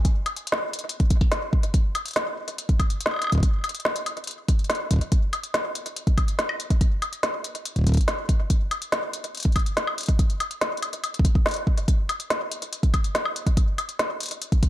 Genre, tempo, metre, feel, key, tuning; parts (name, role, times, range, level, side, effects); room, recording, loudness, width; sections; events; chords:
IDM; 142 BPM; 4/4; straight
electronic kick drum; drums; 0.0-14.7 s; -20 LUFS; equal
organic electronic drum kit; drums; 0.0-14.7 s; hi-hat, snare drum, woodblock; -26 LUFS; left 1 dB; digital delay
little or no reverb; -22 LUFS; side -14 dB against mid
0.0-14.7 A section